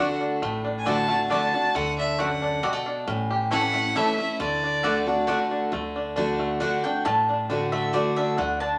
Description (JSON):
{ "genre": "bluegrass", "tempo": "136 BPM", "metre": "3/4", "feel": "straight", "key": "D major", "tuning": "A4 = 439 Hz", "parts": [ { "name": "clear fiddle", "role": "melody", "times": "0.0-5.2 s", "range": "D5 to A5", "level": "-29 LUFS", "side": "equal", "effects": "none" }, { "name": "picked steel-string acoustic guitar", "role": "accompaniment", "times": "0.0-8.8 s", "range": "F#2 to F#4", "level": "-29 LUFS", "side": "equal", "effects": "none" }, { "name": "bluegrass banjo", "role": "arpeggios", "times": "0.0-8.8 s", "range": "G3 to G4", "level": "-32 LUFS", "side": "equal", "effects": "none" }, { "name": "mandolin", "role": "stabs", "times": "0.0-8.7 s", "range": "A3 to A5", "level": "-30 LUFS", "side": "equal", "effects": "none" }, { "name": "upright bass", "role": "bass", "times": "0.4-8.8 s", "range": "A1 to D2", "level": "-39 LUFS", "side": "equal", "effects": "none" } ], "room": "wet large studio reverb, RT60 0.9 s", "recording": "none", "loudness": "-25 LUFS", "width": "mono", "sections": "0.0-5.7 A section; 5.7-8.8 B section", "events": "mandolin solo 5.7-8.8", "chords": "0.0 D; 3.1 A; 4.4 D" }